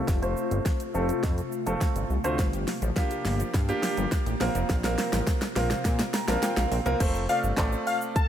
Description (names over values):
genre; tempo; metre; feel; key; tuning
dance-pop; 104 BPM; 4/4; straight; F major; A4 = 444 Hz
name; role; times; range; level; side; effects
clear baby grand piano; accompaniment; 0.0-8.2 s; A3 to Bb5; -30 LUFS; right 1 dB; sidechain pumping, low-pass filter
ethereal airy pad; sustained chords; 0.0-7.0 s; C3 to G4; -35 LUFS; left 2 dB; ensemble chorus, built-in reverb, phaser, sidechain pumping, low-pass filter
fat analog bass; bass; 0.0-7.8 s; F1 to Bb2; -29 LUFS; equal; sidechain pumping
pop drum kit; drums; 0.1-8.3 s; crash cymbal, handclaps, hi-hat, kick drum, shaker, snare drum; -28 LUFS; equal; none
glassy wavetable pluck; arpeggios; 2.4-7.0 s; F3 to F5; -39 LUFS; left 2 dB; none
wide unison lead; melody; 7.3-8.3 s; F5 to A5; -27 LUFS; left 3 dB; sidechain pumping
room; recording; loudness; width
light reverb; none; -24 LUFS; side -10 dB against mid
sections
0.0-7.0 A section; 7.0-8.3 B section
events
build-up 0.0-7.0; drum fill 0.0-7.0; filter sweep 0.0-7.0; grand piano fill 5.8-7.0; drop 7.0-8.3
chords
0.0 F; 2.4 Gm7; 4.4 Bbsus2; 7.0 F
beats
| 0.08 0.66 1.24 1.81 | 2.39 2.96 3.54 4.12 | 4.70 5.27 5.85 6.43 | 7.00 7.58 8.16